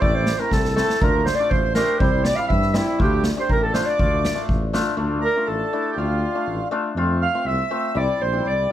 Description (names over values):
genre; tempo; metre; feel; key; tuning
klezmer; 121 BPM; 2/4; straight; D minor; A4 = 441 Hz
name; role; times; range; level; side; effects
mellow clarinet; melody; 0.0-8.7 s; E4 to F5; -23 LUFS; right 1 dB; none
accordion; second line; 0.0-8.7 s; E4 to F5; -28 LUFS; right 4 dB; none
hammered dulcimer; accompaniment; 0.0-8.7 s; G3 to G4; -26 LUFS; left 4 dB; none
mellow tuba; bass; 0.0-8.7 s; A1 to G2; -24 LUFS; equal; none
street-band drum kit; drums; 0.0-4.9 s; kick drum, snare drum; -23 LUFS; equal; none
room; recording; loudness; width
light reverb; none; -18 LUFS; side -12 dB against mid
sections
0.0-5.0 A section; 5.0-8.7 B section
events
drum fill 0.5-1.0; clarinet solo 5.0-8.7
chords
0.0 Am; 1.0 Dm; 2.0 C; 3.0 Dm; 7.0 F; 8.0 C